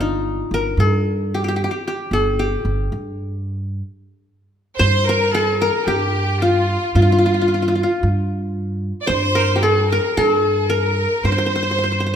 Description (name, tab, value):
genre	Arabic maqam ensemble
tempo	112 BPM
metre	4/4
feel	straight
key	G maqam bayati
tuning	A4 = 440 Hz
part	qanun	melody	0.0-12.2 s	Eb4 to C5	-19 LUFS	left 1 dB	none
part	upright bass	bass	0.0-12.1 s	G1 to G2	-20 LUFS	right 1 dB	none
part	clear studio violin section	second line	4.8-12.2 s	F4 to D5	-22 LUFS	right 1 dB	none
room	moderate recital hall reverb, RT60 1.4 s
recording	minimal, uncompressed stereo recording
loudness	-16 LUFS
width	side -8 dB against mid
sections	0.0-4.8 A section; 4.8-12.2 B section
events	none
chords	none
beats	| 0.50 1.04 1.58 2.12 | 2.65 3.19 3.73 4.26 | 4.80 5.34 5.87 6.41 | 6.95 7.48 8.02 8.55 | 9.09 9.63 10.16 10.70 | 11.24 11.77